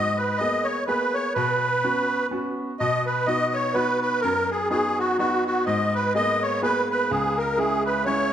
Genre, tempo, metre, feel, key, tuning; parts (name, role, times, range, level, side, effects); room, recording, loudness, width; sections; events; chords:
celtic folk; 125 BPM; 3/4; swing 58% on 8ths; B major; A4 = 439 Hz
musette accordion; melody; 0.0-8.3 s; F#4 to D#5; -22 LUFS; right 1 dB
clear upright piano; accompaniment; 0.0-8.3 s; C#2 to G#4; -27 LUFS; equal
wet recital hall reverb, RT60 1.7 s; nothing above 10.6 kHz; -21 LUFS; side -9 dB against mid
0.0-2.8 A section; 2.8-8.3 A section
0.0 G#madd9; 1.3 Bsus2; 2.8 B; 5.7 G#madd9; 7.1 C#m